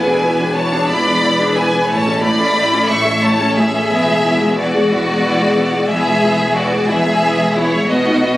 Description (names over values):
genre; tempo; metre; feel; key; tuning
classical, slow romantic movement for string orchestra; 60 BPM (dotted quarters); 12/8; rubato; unclear; A4 = 445 Hz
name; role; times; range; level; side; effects
rich studio violin section; melody; 0.0-8.4 s; C#5 to C#6; -18 LUFS; equal; none
rich studio violin section; second line; 0.0-8.4 s; E4 to E5; -18 LUFS; left 1 dB; none
rich studio viola section; accompaniment; 0.0-8.4 s; G#3 to A4; -18 LUFS; left 1 dB; none
rich studio double bass section; bass; 0.0-8.4 s; E1 to B1; -24 LUFS; equal; none
warm studio cello section; bass; 0.0-8.4 s; E2 to B2; -21 LUFS; equal; none
room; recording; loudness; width
wet scoring stage reverb, RT60 1.6 s; recorded on a phone in the room, studio ambience, compression; -12 LUFS; side -16 dB against mid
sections
0.0-8.4 A section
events
none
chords
0.0 E7; 1.9 A; 3.9 E; 7.9 B7